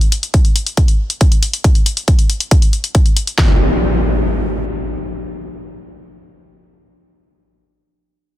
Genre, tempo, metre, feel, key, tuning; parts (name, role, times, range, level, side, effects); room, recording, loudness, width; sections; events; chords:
psychedelic trance; 138 BPM; 4/4; straight
electronic hi-hat; drums; 0.0-3.4 s; -20 LUFS; left 3 dB
big-room dance drum kit; drums; 0.3-3.5 s; handclaps, kick drum, snare drum; -11 LUFS; equal
impact; sound effects; 3.4-7.6 s; -18 LUFS; left 1 dB
light reverb; dense, heavily limited modern master; -12 LUFS; side -14 dB against mid
0.0-3.4 A section; 3.4-6.9 B section